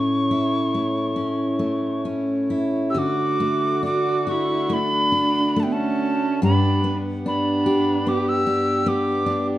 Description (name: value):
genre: celtic folk, Celtic slow air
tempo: 65-76 BPM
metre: 4/4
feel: rubato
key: D major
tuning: A4 = 440 Hz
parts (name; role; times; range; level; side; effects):
- mellow wooden whistle; melody; 0.0-9.5 s; G5 to E6; -24 LUFS; left 1 dB; none
- picked steel-string acoustic guitar; accompaniment; 0.0-9.6 s; G2 to G4; -22 LUFS; left 1 dB; none
- pedal harmonium; sustained chords; 0.0-9.6 s; A3 to F#5; -30 LUFS; right 1 dB; none
- rich viola; second line; 2.9-9.5 s; B3 to G4; -24 LUFS; right 4 dB; none
room: moderate recital hall reverb, RT60 1.5 s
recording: dark, warm production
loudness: -19 LUFS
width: side -14 dB against mid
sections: 0.0-3.0 A section; 3.0-9.6 B section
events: none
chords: 0.0 A; 3.0 D; 6.4 G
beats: 0.33 1.18 2.06 | 2.97 3.85 4.71 5.57 | 6.42 7.25 8.07 8.87